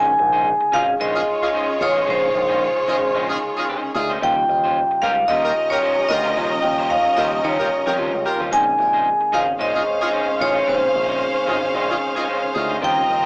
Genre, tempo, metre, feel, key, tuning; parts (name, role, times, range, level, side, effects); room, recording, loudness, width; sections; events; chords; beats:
disco; 112 BPM; 4/4; swing 56% on 16ths; Bb dorian; A4 = 440 Hz
vibraphone with hard mallets; melody; 0.0-13.3 s; C5 to Ab5; -21 LUFS; equal; cassette tape, plate reverb
electric guitar at the edge of break-up; accompaniment; 0.0-13.3 s; G3 to Db5; -31 LUFS; equal; cassette tape, plate reverb
mellow tine electric piano; accompaniment; 0.0-13.3 s; C3 to Ab5; -37 LUFS; equal; cassette tape, plate reverb
clear French horn section; sustained chords; 0.0-13.3 s; Eb3 to Ab4; -34 LUFS; equal; cassette tape, plate reverb
picked electric bass with an envelope filter; bass; 0.0-13.3 s; Ab1 to Eb3; -31 LUFS; equal
warm horn section; stabs; 0.7-12.7 s; Eb4 to Bb4; -29 LUFS; equal; cassette tape, plate reverb, tape echo
bright studio violin section; second line; 1.0-13.3 s; Ab3 to F5; -27 LUFS; equal; cassette tape, plate reverb
moderate booth ambience, RT60 0.2 s; home recording on cassette, small speaker sound; -20 LUFS; mono
0.0-13.3 A section
tine electric piano fill 11.7-12.8
0.0 Bbm11; 4.2 Eb13; 8.5 Bbm11
0.46 1.00 1.54 | 2.07 2.61 3.15 3.69 | 4.22 4.76 5.30 5.83 | 6.37 6.91 7.45 7.98 | 8.52 9.06 9.60 10.13 | 10.67 11.21 11.74 12.28 | 12.82